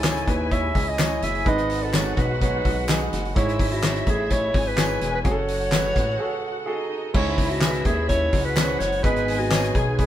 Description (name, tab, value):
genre	piano-driven pop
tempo	127 BPM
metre	4/4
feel	straight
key	C# minor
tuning	A4 = 441 Hz
part	warm clarinet	melody	0.0-10.1 s	E4 to E5	-27 LUFS	equal	none
part	dark studio violin section	second line	0.0-10.1 s	D#4 to G#5	-31 LUFS	left 2 dB	none
part	warm upright piano	accompaniment	0.0-10.1 s	G#2 to C#5	-27 LUFS	right 2 dB	none
part	fat analog bass	bass	0.0-10.1 s	E1 to D#2	-28 LUFS	equal	none
part	loose indie drum kit	drums	0.0-10.1 s	crash cymbal, handclaps, hi-hat, kick drum, snare drum	-24 LUFS	equal	none
part	tambourine	percussion	0.0-9.6 s	none	-40 LUFS	left 4 dB	none
room	light reverb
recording	band playing live in one room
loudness	-20 LUFS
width	side -12 dB against mid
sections	0.0-7.1 A section; 7.1-10.1 A section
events	break 6.2-7.1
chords	0.0 C#m; 1.5 G#m; 3.4 C#m/G#; 5.3 F#madd9; 7.1 C#m; 9.0 G#m